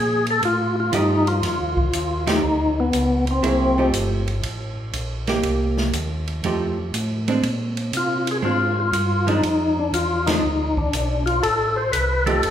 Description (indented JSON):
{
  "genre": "soul jazz organ trio",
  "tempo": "120 BPM",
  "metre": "4/4",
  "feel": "swing 68% on 8ths",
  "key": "F mixolydian",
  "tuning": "A4 = 440 Hz",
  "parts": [
    { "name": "percussive tonewheel organ", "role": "melody", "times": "0.0-3.9, 8.0-12.5 s", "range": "B3 to C5", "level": "-20 LUFS", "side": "left 2 dB", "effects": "slow rotary speaker, overdrive, chorus vibrato" },
    { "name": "mellow tonewheel organ", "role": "bass", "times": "0.0-12.5 s", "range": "F1 to C3", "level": "-24 LUFS", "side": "equal", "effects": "overdrive, slow rotary speaker" },
    { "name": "open jazz drum kit", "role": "drums", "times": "0.3-12.5 s", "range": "hi-hat, kick drum, ride cymbal, snare drum", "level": "-29 LUFS", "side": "right 1 dB", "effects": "none" },
    { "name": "archtop guitar, miked and amplified", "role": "accompaniment", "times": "0.9-12.4 s", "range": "F3 to Ab4", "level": "-25 LUFS", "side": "right 3 dB", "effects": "none" }
  ],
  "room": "wet recital hall reverb, RT60 1.6 s",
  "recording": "recorded in a church or concert hall",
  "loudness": "-19 LUFS",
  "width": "side -10 dB against mid",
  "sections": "0.0-12.5 A section",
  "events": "band accent 2.2, 10.2",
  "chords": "0.0 F9; 5.4 Cm7; 6.4 F9; 7.4 Bb9; 9.4 Bdim; 11.4 F9",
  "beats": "0.43 0.93 | 1.43 1.93 2.43 2.93 | 3.43 3.93 4.43 4.93 | 5.44 5.94 6.44 6.94 | 7.44 7.94 8.44 8.94 | 9.44 9.94 10.44 10.93 | 11.43 11.93 12.43"
}